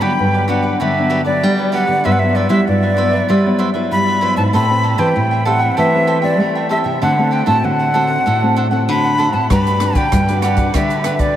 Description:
samba and choro; 97 BPM; 4/4; straight; G major; A4 = 441 Hz
jazz flute; melody; 0.0-11.4 s; D5 to B5; -17 LUFS; equal; diffuse ambient delay
cavaquinho; accompaniment; 0.0-11.4 s; D4 to G5; -22 LUFS; right 3 dB
nylon-string guitar; accompaniment; 0.0-11.3 s; G2 to B4; -20 LUFS; left 3 dB; analog chorus
nylon-string guitar; bass; 0.0-11.4 s; G2 to A3; -18 LUFS; right 1 dB
open jazz drum kit; drums; 9.5-11.3 s; hi-hat, kick drum, rim click; -19 LUFS; equal
wet huge ambient reverb, RT60 9.0 s; dreamy mix soaked in reverb; -13 LUFS; side -11 dB against mid
0.0-11.4 A section
0.0 Gmaj7; 2.1 Cmaj9#11/G; 4.5 Am9; 7.0 D7; 9.5 Gmaj7

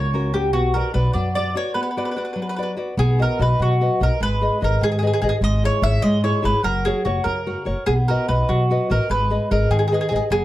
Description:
italian folk, Italian serenade; 99 BPM (dotted quarters); 6/8; rubato; B major; A4 = 441 Hz
mandolin; melody; 0.0-10.4 s; F#4 to E5; -23 LUFS; right 1 dB
nylon-string guitar; accompaniment; 0.0-10.4 s; C#3 to D#5; -24 LUFS; left 1 dB
upright bass; bass; 0.0-10.4 s; F#1 to B2; -20 LUFS; equal
moderate studio reverb, RT60 0.6 s; dark, warm production, faint mains hum; -18 LUFS; side -15 dB against mid
0.0-3.0 A section; 3.0-10.4 B section
break 1.8-3.0
0.0 F#; 0.5 Bm; 3.0 B; 4.2 G#m; 5.4 C#m/G#; 6.6 F#; 7.9 B; 9.1 G#m

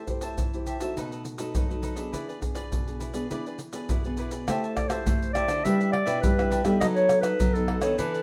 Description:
samba and choro; 103 BPM; 4/4; straight; A minor; A4 = 440 Hz
cavaquinho; accompaniment; 0.0-8.2 s; D4 to A5; -38 LUFS; equal
nylon-string guitar; accompaniment; 0.0-8.2 s; B2 to C5; -35 LUFS; equal
maracas, surdo, pandeiro and tamborim; percussion; 0.1-8.2 s; -32 LUFS; equal
nylon-string guitar; bass; 4.5-8.2 s; B2 to A3; -30 LUFS; equal
warm clarinet; melody; 4.8-8.2 s; A4 to E5; -28 LUFS; equal
moderate studio reverb, RT60 0.7 s; -27 LUFS; mono
0.0-4.5 A section; 4.5-8.2 B section
0.0 Am7; 1.0 B7; 2.1 E7; 4.5 Am7; 5.6 Em7; 6.8 B7/F#

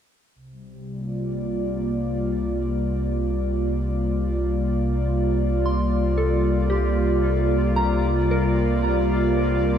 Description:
ambient; 56 BPM; 3/4; straight; A4 = 440 Hz
airy breathy pad; sustained chords; 0.4-9.8 s; C3 to D5; -22 LUFS; equal; chorus
warm sub bass; bass; 0.4-9.8 s; C2; -25 LUFS; equal
soft synth bell; arpeggios; 5.7-9.8 s; G4 to C6; -28 LUFS; right 1 dB; chorus, diffuse ambient delay
moderate plate reverb, RT60 3.0 s; dreamy mix soaked in reverb, cassette tape; -20 LUFS; side -8 dB against mid
0.3-9.8 A section
fade-in on synth bell 0.3-9.8
0.3 C9sus4

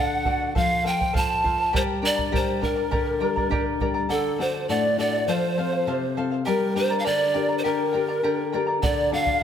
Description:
andean folk, Andean ensemble; 102 BPM; 2/4; straight; G minor; A4 = 440 Hz
breathy pan flute; melody; 0.0-9.4 s; A4 to A5; -25 LUFS; right 1 dB
breathy mellow quena; second line; 0.0-9.4 s; A4 to Bb5; -30 LUFS; left 1 dB
charango; accompaniment; 0.0-9.4 s; G4 to Bb5; -29 LUFS; right 1 dB
nylon-string guitar; accompaniment; 0.0-9.4 s; A2 to C5; -27 LUFS; left 5 dB
bombo; percussion; 0.3-3.9, 8.8-9.4 s; -28 LUFS; right 2 dB
moderate scoring stage reverb, RT60 1.8 s; -21 LUFS; side -8 dB against mid
0.0-4.1 A section; 4.1-9.4 A section
0.0 D; 0.6 F; 1.7 Gm; 4.1 D; 5.3 F; 6.5 Gm; 8.8 D

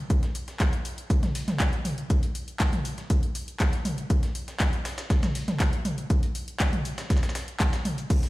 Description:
techno; 120 BPM; 4/4; straight
dusty soul sampler-style drum kit; drums; 0.1-8.3 s; hi-hat, shaker, snare drum; -39 LUFS; equal; sidechain pumping on perc, high-pass filter on perc, small room reverb, high-pass filter on snare, sidechain pumping on hats, high-pass filter on hats
electronic kick drum; drums; 0.1-8.2 s; -24 LUFS; equal; small room reverb
house drum kit; drums; 0.1-8.3 s; crash cymbal, handclaps, hi-hat, toms; -31 LUFS; equal; overdrive, small room reverb
little or no reverb; played on a big sound system in a bare room, stone room reverb; -24 LUFS; side -18 dB against mid
0.0-8.3 A section

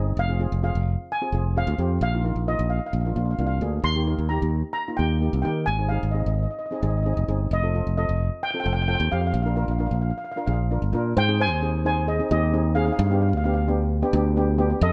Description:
calypso; 131 BPM; 4/4; straight; A4 = 442 Hz
steel pan; accompaniment; 0.0-14.8 s; Bb3 to Bb4; -32 LUFS; equal
modern bright fingered electric bass; bass; 0.0-14.9 s; F1 to Eb3; -25 LUFS; equal
steel pan; melody; 0.2-14.9 s; G4 to C6; -30 LUFS; equal; plate reverb
light reverb; -24 LUFS; mono
0.0-11.2 A section; 11.2-14.9 B section
0.2 Fm; 2.0 Bbsus4; 2.9 Bb; 3.8 Eb; 5.7 Ab; 7.5 F7; 9.3 Bb; 11.2 Ab; 13.0 G

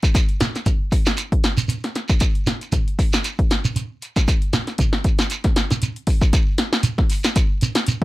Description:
afrobeat; 116 BPM; 4/4; swing 55% on 16ths
punchy analog drum machine; drums; 0.0-8.0 s; hi-hat, kick drum, snare drum; -18 LUFS; equal
shekere; percussion; 0.0-8.0 s; -23 LUFS; right 2 dB
little or no reverb; -18 LUFS; side -18 dB against mid
0.0-6.3 A section; 6.3-8.0 B section

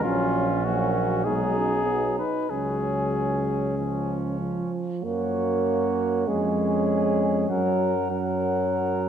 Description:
classical, brass quintet; 98 BPM; 4/4; rubato; F# major; A4 = 440 Hz
mellow cornet; melody; 0.0-9.1 s; E#4 to F#5; -29 LUFS; left 5 dB
mellow trumpet; second line; 0.0-9.1 s; C#4 to A#4; -33 LUFS; right 7 dB
mellow French horn; accompaniment; 0.0-9.1 s; E#3 to C#4; -31 LUFS; left 4 dB
warm trombone; accompaniment; 0.0-9.1 s; E#3 to D#4; -26 LUFS; right 3 dB
clear tuba; bass; 0.0-9.1 s; A#1 to F#2; -29 LUFS; right 3 dB
wet scoring stage reverb, RT60 1.9 s; dark, warm production; -22 LUFS; side -8 dB against mid
0.0-5.1 A section; 5.1-9.1 B section
0.0 F#/A#; 1.3 G#m7/B; 2.5 C#sus4; 3.8 C#; 5.1 F#; 6.3 C#/E#; 7.5 F#

